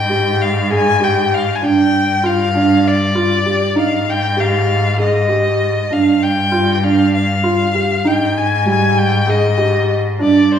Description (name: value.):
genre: contemporary instrumental, chamber music in an uneven meter.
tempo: 196 BPM (eighths).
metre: 7/8.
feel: straight.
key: unclear.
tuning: A4 = 440 Hz.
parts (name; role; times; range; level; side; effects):
rich violin; melody; 0.0-10.6 s; C5 to Ab5; -17 LUFS; left 3 dB; none.
rich cello; bass; 0.0-10.6 s; G2 to Ab2; -18 LUFS; equal; none.
felt-muted upright piano; arpeggios; 0.1-10.6 s; G3 to Ab4; -16 LUFS; right 2 dB; none.
room: wet recital hall reverb, RT60 1.5 s.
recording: recorded in a church or concert hall.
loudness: -12 LUFS.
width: side -8 dB against mid.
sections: 0.0-10.6 A section.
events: none.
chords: 0.0 Ab5; 1.6 G5; 3.8 Ab5; 5.9 G5; 8.1 Ab5.